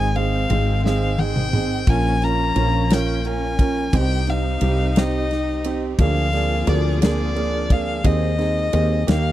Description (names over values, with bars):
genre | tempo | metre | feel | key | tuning
six-eight pop ballad | 58 BPM (dotted quarters) | 6/8 | straight | Ab major | A4 = 436 Hz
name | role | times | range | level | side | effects
warm violin | melody | 0.0-9.3 s | D5 to Bb5 | -25 LUFS | left 3 dB | none
warm grand piano | accompaniment | 0.0-9.3 s | Bb3 to Bb4 | -25 LUFS | right 8 dB | none
warm studio string section | sustained chords | 0.0-9.3 s | D3 to Ab4 | -31 LUFS | left 1 dB | none
picked plugged-in steel-string acoustic guitar | arpeggios | 0.0-9.3 s | Eb3 to Ab4 | -31 LUFS | left 5 dB | none
woody fretless electric bass | bass | 0.0-9.3 s | Ab1 to Eb2 | -21 LUFS | equal | analog chorus
modern studio drum kit | drums | 0.2-9.2 s | crash cymbal, kick drum, ride cymbal, snare drum, toms | -20 LUFS | equal | none
room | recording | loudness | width
little or no reverb | dry, close 1970s-style studio recording | -17 LUFS | side -14 dB against mid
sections
0.0-9.3 A section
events
drum fill 0.8-1.9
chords
0.0 Ab; 1.9 Bbm; 3.9 Cm; 6.0 Bb7/D; 8.0 Ab/Eb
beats
0.84 | 1.87 2.90 | 3.93 4.96 | 5.99 7.01 | 8.04 9.07